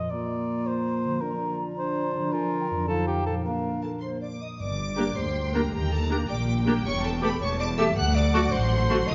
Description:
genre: classical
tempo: 107 BPM (dotted quarters)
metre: 6/8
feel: straight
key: Bb major, G minor from 4.6 s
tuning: A4 = 442 Hz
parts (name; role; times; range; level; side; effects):
- mellow cor anglais; second line; 0.0-9.0 s; G4 to Eb5; -34 LUFS; equal; none
- concert harp; arpeggios; 0.0-9.1 s; F2 to Bb5; -36 LUFS; equal; none
- clear clarinet; second line; 0.1-9.0 s; D4 to G4; -36 LUFS; equal; none
- mellow hollow silver concert flute; second line; 0.1-9.1 s; G4 to Bb5; -36 LUFS; equal; none
- dark French horn section; sustained chords; 0.1-9.0 s; F3 to G4; -35 LUFS; equal; none
- clear symphonic violin section; melody; 3.8-9.1 s; G5 to F#6; -36 LUFS; equal; none
- rich symphonic cello section; bass; 4.6-9.1 s; D2 to C3; -32 LUFS; equal; none
- rich symphonic double bass section; bass; 4.6-9.1 s; E1 to Eb2; -31 LUFS; equal; none
- rich symphonic viola section; accompaniment; 5.0-9.1 s; A3 to G4; -33 LUFS; equal; none
- clear symphonic violin section; second line; 5.1-9.1 s; F5 to Bb5; -39 LUFS; equal; none
room: wet scoring stage reverb, RT60 1.6 s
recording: nothing above 7.5 kHz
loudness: -26 LUFS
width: mono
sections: 0.0-4.6 A section; 4.6-9.1 B section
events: none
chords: 0.1 Bb; 1.2 Bb/D; 2.3 Bb7/D; 2.9 F9; 3.5 Bb; 4.6 Gm; 5.7 Ebmaj7; 6.9 A7/E; 8.0 D7

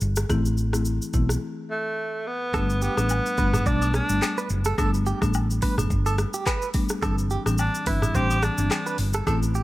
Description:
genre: afrobeats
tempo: 107 BPM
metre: 4/4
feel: swing 55% on 16ths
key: G major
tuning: A4 = 439 Hz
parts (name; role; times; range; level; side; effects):
- hollow-body short-scale fingered electric bass; bass; 0.0-9.6 s; F#1 to B1; -25 LUFS; equal; none
- afro-pop drum kit; drums; 0.0-9.6 s; handclaps, hi-hat, kick drum, rim click, shaker, toms; -27 LUFS; equal; none
- buzzing marimba with hard mallets; accompaniment; 0.3-9.5 s; E3 to E4; -29 LUFS; left 3 dB; none
- breathy tenor saxophone; melody; 1.7-9.0 s; A3 to G4; -28 LUFS; right 1 dB; none
- direct-recorded clean electric guitar; riff; 2.5-9.6 s; G4 to D5; -31 LUFS; right 5 dB; tremolo, tape echo
- agogo bells and woodblock; percussion; 2.5-9.4 s; none; -36 LUFS; left 7 dB; none
room: little or no reverb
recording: none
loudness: -22 LUFS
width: side -17 dB against mid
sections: 0.0-2.5 A section; 2.5-9.6 B section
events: break 1.4-2.5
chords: 0.3 Am; 2.5 Gadd9; 7.0 Cadd9/G

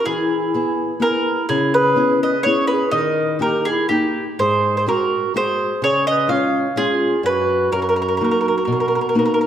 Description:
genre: italian folk, Italian serenade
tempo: 126 BPM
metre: 3/4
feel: swing 54% on 8ths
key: unclear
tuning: A4 = 440 Hz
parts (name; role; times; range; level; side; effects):
- mandolin; melody; 0.0-9.5 s; G4 to E#5; -18 LUFS; equal; none
- dark clarinet; second line; 0.0-9.5 s; D#4 to C#5; -22 LUFS; right 4 dB; none
- nylon-string guitar; accompaniment; 0.1-9.5 s; F#2 to G#4; -22 LUFS; left 2 dB; none
room: wet concert hall reverb, RT60 1.9 s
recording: recorded in a church or concert hall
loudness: -16 LUFS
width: side -10 dB against mid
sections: 0.0-9.5 A section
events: none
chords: 0.0 E; 1.5 C#m7; 2.9 D#; 4.4 G#7; 5.8 C#; 7.2 N.C.; 7.7 F#6; 8.7 Bmaj7

